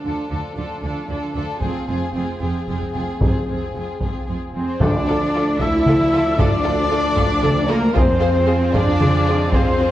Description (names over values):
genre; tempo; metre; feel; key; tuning
cinematic, epic orchestral film score; 76 BPM (dotted quarters); 6/8; straight; D minor; A4 = 440 Hz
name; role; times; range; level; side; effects
rich chamber violin section; melody; 0.0-9.9 s; Ab4 to C5; -32 LUFS; left 3 dB; none
warm symphonic violin section; second line; 0.0-9.9 s; F4 to E5; -32 LUFS; left 2 dB; none
warm studio viola section; accompaniment; 0.0-9.9 s; C4 to A4; -27 LUFS; right 2 dB; none
mellow French horn section; sustained chords; 0.0-9.9 s; F3 to A4; -24 LUFS; left 3 dB; none
rich symphonic cello section; bass; 0.1-9.9 s; F2 to E4; -26 LUFS; right 2 dB; none
rich symphonic double bass section; bass; 0.1-9.9 s; F1 to F2; -25 LUFS; right 2 dB; none
taiko ensemble; drums; 1.6-9.9 s; none; -21 LUFS; equal; none
concert flute; second line; 4.6-9.9 s; Bb5 to E6; -27 LUFS; left 3 dB; none
clear trumpet section; stabs; 4.6-9.9 s; Bb4 to E5; -26 LUFS; right 1 dB; none
mellow trombone section; sustained chords; 4.8-9.9 s; F3 to A3; -30 LUFS; right 3 dB; none
rich symphonic string section; sustained chords; 4.8-9.9 s; F3 to F5; -28 LUFS; equal; none
timpani; percussion; 4.8-5.6 s; D3; -24 LUFS; equal; none
room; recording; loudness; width
wet recital hall reverb, RT60 1.5 s; worn, warbling old tape, cassette tape, warbly pitch drift; -17 LUFS; side -13 dB against mid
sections
0.0-4.8 A section; 4.8-9.9 B section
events
none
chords
0.0 Dm; 1.6 Fm; 4.8 Dm; 8.0 Fm